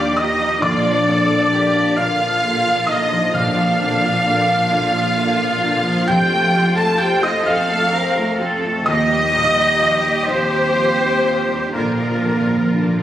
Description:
cinematic, emotional film score for orchestra; 43 BPM (dotted quarters); 6/8; uneven beats, rubato; Bb major; A4 = 441 Hz
rich studio violin section; melody; 0.0-13.0 s; Bb4 to A5; -22 LUFS; equal
rich symphonic violin section; second line; 0.0-13.0 s; Bb4 to A5; -25 LUFS; equal
silver concert flute; second line; 0.0-13.0 s; Bb4 to A5; -27 LUFS; equal
warm clarinet; second line; 0.0-13.0 s; Bb4 to A5; -24 LUFS; equal
warm oboe; second line; 0.0-13.0 s; Bb4 to A5; -26 LUFS; right 1 dB
felt-muted upright piano; accompaniment; 0.0-13.0 s; Bb1 to A6; -27 LUFS; left 1 dB
rich symphonic viola section; accompaniment; 0.0-13.0 s; D3 to A4; -28 LUFS; right 1 dB
dark French horn section; sustained chords; 0.0-13.0 s; Bb3 to A4; -25 LUFS; left 2 dB
concert harp; arpeggios; 0.0-13.0 s; Bb2 to A5; -26 LUFS; left 3 dB
rich symphonic cello section; bass; 0.0-13.0 s; D4 to Bb4; -25 LUFS; right 1 dB
warm symphonic double bass section; bass; 0.0-13.0 s; Bb1 to F2; -24 LUFS; right 4 dB
timpani; percussion; 0.6-7.4, 11.7-13.0 s; F2 to Bb2; -27 LUFS; right 1 dB
moderate scoring stage reverb, RT60 1.9 s; recorded on a phone in the room, club reverb, compression; -14 LUFS; side -12 dB against mid
0.0-13.0 A section
timpani fill 11.7-13.0
0.0 Ebadd9; 0.6 Bb; 6.1 F; 8.9 Ebadd9; 11.7 Bb
| 0.62 1.98 | 3.35 4.71 | 6.09 7.47 | 8.87 10.28 | 11.74

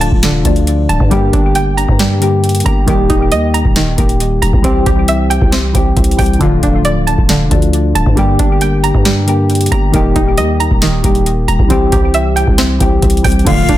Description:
hip hop, trap; 136 BPM; 4/4; half-time; A4 = 440 Hz
soft electric-piano-like synth keys; accompaniment; 0.0-13.8 s; D3 to G4; -15 LUFS; left 2 dB; chorus
string-like resonator pluck; arpeggios; 0.0-13.8 s; D3 to Bb5; -18 LUFS; right 2 dB; chorus, ping-pong delay
growling 808-style bass; bass; 0.0-13.8 s; D1 to G2; -15 LUFS; equal
booming analog drum machine; drums; 0.0-13.8 s; crash cymbal, hi-hat, kick drum, snare drum; -14 LUFS; equal
silver concert flute; second line; 13.5-13.8 s; F5; -17 LUFS; left 2 dB
warm chamber string section; sustained chords; 13.5-13.8 s; D4 to F5; -29 LUFS; left 2 dB
little or no reverb; dense, heavily limited modern master; -9 LUFS; side -14 dB against mid
0.0-13.5 A section
0.0 Dm; 1.1 Gm; 2.9 Eb; 4.6 C; 6.4 Dm; 8.2 Gm; 9.9 Eb; 11.7 C
0.23 0.67 | 1.11 1.55 2.00 2.44 | 2.88 3.32 3.76 4.20 | 4.64 5.08 5.53 5.97 | 6.41 6.85 7.29 7.73 | 8.17 8.61 9.05 9.50 | 9.94 10.38 10.82 11.26 | 11.70 12.14 12.58 13.03 | 13.47

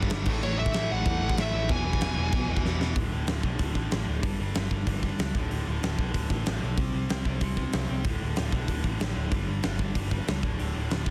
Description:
punk rock; 189 BPM; 4/4; straight; A4 = 439 Hz
distorted electric guitar; riff; 0.0-11.1 s; D2 to C4; -36 LUFS; equal; distortion
overdriven electric guitar; riff; 0.0-3.0 s; E2 to A3; -37 LUFS; equal
picked electric bass; bass; 0.0-11.1 s; D1 to E2; -33 LUFS; equal
big rock drum kit; drums; 0.0-11.1 s; crash cymbal, hi-hat, kick drum, snare drum; -32 LUFS; equal
smooth overdriven lead guitar; melody; 0.4-2.6 s; C#5 to G#5; -33 LUFS; equal
little or no reverb; dense, heavily limited modern master; -28 LUFS; mono
0.0-3.0 A section; 3.0-11.1 B section
drum fill 2.6-3.0
0.3 A5; 1.7 E; 3.0 D5; 4.2 G5; 5.3 D5; 6.8 C5; 8.1 D5; 9.3 G5; 10.4 D5
0.11 | 0.43 0.74 1.06 1.38 | 1.70 2.01 2.33 2.65 | 2.96 3.28 3.60 3.92 | 4.24 4.55 4.87 5.19 | 5.51 5.83 6.14 6.46 | 6.78 7.10 7.42 7.73 | 8.05 8.37 8.69 9.01 | 9.32 9.64 9.96 10.28 | 10.59 10.91

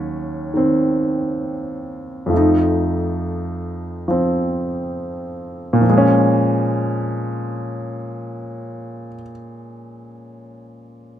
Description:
solo jazz; 68 BPM; 4/4; swing 67% on 8ths; Bb minor; A4 = 440 Hz
warm baby grand piano; solo; 0.0-11.2 s; Eb2 to Eb4; -18 LUFS; equal
light reverb; -17 LUFS; side -11 dB against mid
0.0-5.8 A section; 5.8-9.4 B section
0.0 Ebm7; 2.3 F7; 5.8 Bbm7
0.55 1.43 | 2.31 3.20 4.08 4.96 | 5.84 6.72 7.61 8.49

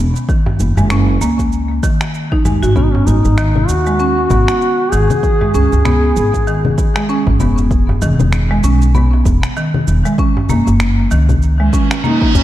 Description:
organic downtempo; 97 BPM; 4/4; swing 58% on 16ths; A4 = 440 Hz
buzzing marimba with hard mallets; arpeggios; 0.0-12.4 s; D#3 to F#4; -17 LUFS; equal; low-pass filter, ping-pong delay
upright bass; bass; 0.0-12.4 s; E1 to D#2; -14 LUFS; equal
electronic shaker, finger snaps and congas; drums; 0.2-12.4 s; -22 LUFS; left 3 dB; overdrive
electronic kick drum; drums; 0.3-12.4 s; -16 LUFS; equal
darbuka; percussion; 0.5-12.4 s; -22 LUFS; right 1 dB
mellow duduk; melody; 2.8-6.7, 12.0-12.4 s; C#4 to G#4; -18 LUFS; equal; vintage 12-bit sampler grit, tape echo
reverse cymbal; sound effects; 11.7-12.4 s; -22 LUFS; right 4 dB
moderate lush hall reverb, RT60 2.0 s, studio reverb; dreamy mix soaked in reverb; -11 LUFS; side -13 dB against mid
0.0-12.4 A section
reverse cymbal 11.7-12.4
0.3 F#; 2.8 G#m7; 5.2 E; 10.2 F#
| 0.29 0.91 1.52 2.14 | 2.76 3.38 4.00 4.62 | 5.24 5.85 6.47 7.09 | 7.71 8.33 8.95 9.57 | 10.18 10.80 11.42 12.04

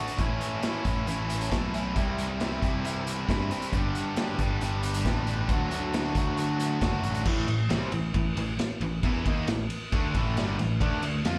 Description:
classic rock; 136 BPM; 4/4; straight; A4 = 441 Hz
biting overdriven guitar; riff; 0.0-11.4 s; G2 to G4; -34 LUFS; equal; slapback echo
vintage drum kit; drums; 0.1-11.4 s; crash cymbal, hi-hat, kick drum, ride cymbal, snare drum; -33 LUFS; equal
raw garage guitar; riff; 0.2-11.4 s; G2 to F4; -39 LUFS; equal; overdrive, slapback echo
modern bright picked electric bass; bass; 0.2-11.4 s; F#1 to G2; -33 LUFS; equal
small room ambience; live gig heard through the venue's PA, club reverb; -28 LUFS; mono
0.0-7.3 A section; 7.3-11.4 B section
0.2 A; 2.0 C; 3.7 G; 5.5 D; 7.3 A5; 10.8 D5
| 0.19 0.63 1.08 1.52 | 1.96 2.40 2.84 3.29 | 3.73 4.17 4.61 5.05 | 5.50 5.94 6.38 6.82 | 7.26 7.71 8.15 8.59 | 9.04 9.48 9.92 10.37 | 10.81 11.25

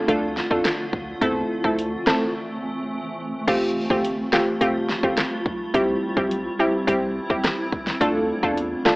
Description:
dancehall; 106 BPM; 4/4; straight; A4 = 440 Hz
granular cloud pad; sustained chords; 0.0-9.0 s; D3 to F4; -29 LUFS; equal; built-in reverb
glassy wavetable pluck; accompaniment; 0.1-9.0 s; G3 to A4; -21 LUFS; equal; chorus
warm sub bass; bass; 0.1-8.8 s; F1 to F2; -37 LUFS; equal
pop drum kit; drums; 0.1-9.0 s; crash cymbal, hi-hat, kick drum, rim click, snare drum; -25 LUFS; equal
light reverb, digital ambience; worn, warbling old tape, cassette tape, warbly pitch drift, AM radio sound; -20 LUFS; side -24 dB against mid
0.0-3.5 A section; 3.5-9.0 B section
break 2.3-3.5
0.0 Dm; 1.2 Am; 3.5 Fadd9; 5.7 C; 8.0 Dm
0.08 0.65 | 1.22 1.78 2.35 2.91 | 3.48 4.04 4.61 5.18 | 5.74 6.31 6.88 7.44 | 8.01 8.57

